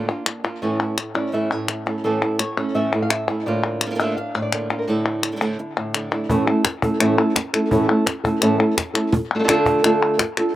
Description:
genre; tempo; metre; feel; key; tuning
flamenco; 169 BPM; 4/4; straight; unclear; A4 = 436 Hz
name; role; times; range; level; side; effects
flamenco guitar; melody; 0.0-10.6 s; A2 to F5; -20 LUFS; right 1 dB; none
flamenco guitar; stabs; 0.0-6.3 s; A2 to F4; -25 LUFS; right 2 dB; none
palmas hand claps; percussion; 0.1-10.6 s; none; -22 LUFS; left 4 dB; none
cajon; percussion; 6.3-10.4 s; none; -26 LUFS; right 1 dB; none
room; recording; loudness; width
light reverb; recorded outdoors, with no room sound; -18 LUFS; side -13 dB against mid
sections
0.0-6.3 A section; 6.3-10.6 B section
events
none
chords
0.0 Bb/A; 0.6 A; 3.5 Bb/A; 4.9 Asus4; 6.3 A; 9.1 Dm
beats
0.27 | 0.62 0.98 1.33 1.69 | 2.04 2.40 2.75 3.10 | 3.46 3.81 4.17 4.53 | 4.88 5.24 5.59 5.95 | 6.30 6.65 7.01 7.36 | 7.72 8.07 8.43 8.78 | 9.13 9.49 9.84 10.20 | 10.55

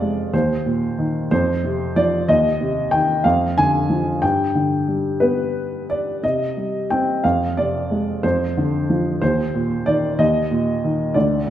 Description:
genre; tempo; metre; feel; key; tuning
classical, lyrical solo piano; 61 BPM (dotted quarters); 6/8; rubato; C minor; A4 = 440 Hz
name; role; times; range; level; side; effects
dark upright piano; solo; 0.0-11.5 s; D2 to Ab5; -17 LUFS; equal; none
room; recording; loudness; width
wet recital hall reverb, RT60 1.4 s; none; -17 LUFS; side -11 dB against mid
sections
0.0-11.5 A section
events
none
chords
0.3 Cm7/Eb; 1.3 F5; 2.3 Cm/Eb; 3.2 Ddim/F; 4.2 G; 6.2 Cm; 7.2 Fm; 8.2 Dm7/F; 9.2 Eb5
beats
| 0.33 1.31 | 2.27 3.24 | 4.22 5.22 | 6.23 7.24 | 8.23 9.21 | 10.19 11.15

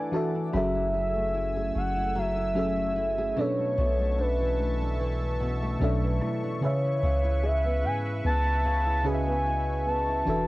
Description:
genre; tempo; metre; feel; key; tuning
R&B; 74 BPM; 4/4; swing 54% on 16ths; F# minor; A4 = 440 Hz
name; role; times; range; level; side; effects
mellow FM electric piano; accompaniment; 0.0-10.5 s; B2 to A5; -31 LUFS; equal; chorus, phaser, cassette tape
warm analog pad; sustained chords; 0.0-10.5 s; A3 to E6; -39 LUFS; right 2 dB; chorus, phaser, cassette tape
nylon-string guitar; arpeggios; 0.0-10.5 s; B2 to G#4; -33 LUFS; left 1 dB; cassette tape
soft 808-style bass; bass; 0.5-10.5 s; E1 to G#2; -29 LUFS; equal; none
large celesta; texture; 0.5-10.5 s; E4 to F#4; -41 LUFS; right 1 dB; cassette tape, analog delay
gliding portamento lead; melody; 0.6-10.5 s; B4 to A5; -28 LUFS; equal; chorus, cassette tape
room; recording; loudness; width
little or no reverb; home recording on cassette; -24 LUFS; side -19 dB against mid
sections
0.5-10.5 A section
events
break 0.0-0.5; FM electric piano fill 0.0-0.5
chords
0.0 E9sus4; 0.5 F#m9; 3.4 Bm11; 6.6 C#m7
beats
| 0.54 1.35 2.16 2.97 | 3.78 4.59 5.40 6.21 | 7.02 7.83 8.64 9.46 | 10.27

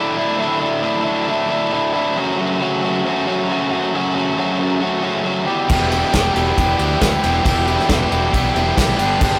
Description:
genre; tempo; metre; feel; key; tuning
indie rock; 136 BPM; 4/4; straight; unclear; A4 = 440 Hz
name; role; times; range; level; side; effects
tonewheel organ; sustained chords; 0.0-9.4 s; E4 to D6; -33 LUFS; equal; none
biting overdriven guitar; riff; 0.0-9.4 s; E2 to G4; -20 LUFS; equal; none
distorted electric guitar; riff; 5.7-9.4 s; E3 to G4; -27 LUFS; equal; overdrive
fuzz fingered electric bass; bass; 5.7-9.4 s; E1 to D2; -24 LUFS; equal; overdrive
unplugged drum kit; drums; 5.7-9.3 s; crash cymbal, kick drum, ride cymbal, snare drum; -22 LUFS; equal; none
room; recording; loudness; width
moderate studio reverb, RT60 0.5 s; rough rehearsal-room recording, warm saturation; -18 LUFS; mono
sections
0.0-9.4 A section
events
none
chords
0.0 Asus4; 2.2 F#m7; 5.5 Em7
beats
| 0.39 0.83 1.28 1.72 | 2.17 2.61 3.05 3.49 | 3.94 4.38 4.82 5.26 | 5.70 6.14 6.58 7.02 | 7.46 7.90 8.34 8.78 | 9.21

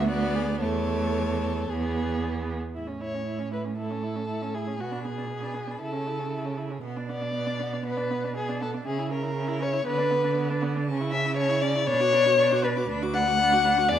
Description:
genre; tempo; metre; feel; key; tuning
quick classical-period movement for string quartet; 118 BPM; 4/4; straight; A major; A4 = 438 Hz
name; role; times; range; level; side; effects
dark violin; melody; 0.0-14.0 s; C#5 to D6; -38 LUFS; left 6 dB; none
warm violin; second line; 0.0-14.0 s; F#4 to F#5; -26 LUFS; left 3 dB; none
rich viola; accompaniment; 0.0-14.0 s; A3 to F#4; -33 LUFS; right 2 dB; none
rich cello; bass; 0.0-14.0 s; D2 to D3; -30 LUFS; right 4 dB; none
room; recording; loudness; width
moderate recital hall reverb, RT60 1.4 s; none; -24 LUFS; side -10 dB against mid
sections
0.0-2.8 A section; 2.8-14.0 B section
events
none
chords
0.0 Bm/D; 0.6 A/E; 1.7 E; 2.8 A; 4.8 G#dim/B; 5.8 A/C#; 6.8 Bm; 8.9 A#dim/C#; 9.9 Bm/D; 10.9 A/C#; 11.9 Bm; 12.9 Bm/D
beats
0.09 | 0.62 1.17 1.70 2.23 | 2.77 3.28 3.79 4.30 | 4.81 5.32 5.83 6.34 | 6.85 7.36 7.86 8.37 | 8.87 9.37 9.87 10.37 | 10.87 11.37 11.88 12.39 | 12.89 13.40 13.91

